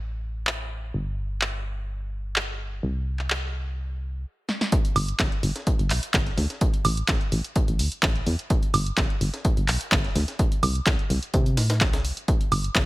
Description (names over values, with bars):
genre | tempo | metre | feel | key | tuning
piano house | 127 BPM | 4/4 | straight | unclear | A4 = 440 Hz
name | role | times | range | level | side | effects
solid FM bass | bass | 0.0-12.8 s | G1 to C3 | -26 LUFS | equal | sidechain pumping
punchy analog drum machine | drums | 0.5-12.9 s | handclaps, hi-hat, snare drum, woodblock | -26 LUFS | right 1 dB | none
breakbeat sampler-style drum kit | drums | 4.7-12.9 s | hi-hat, snare drum | -35 LUFS | equal | high-pass filter on hats, high-pass filter on snare
electronic kick drum | drums | 4.7-12.9 s | none | -23 LUFS | equal | none
room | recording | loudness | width
little or no reverb | none | -22 LUFS | side -19 dB against mid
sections
0.0-4.7 A section; 4.7-12.9 B section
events
drum fill 4.5; drop 4.7-12.9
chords
none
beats
0.00 0.47 | 0.94 1.42 1.89 2.36 | 2.83 3.31 3.78 4.25 | 4.72 5.20 5.67 6.14 | 6.61 7.08 7.56 8.03 | 8.50 8.97 9.45 9.92 | 10.39 10.87 11.34 11.81 | 12.28 12.76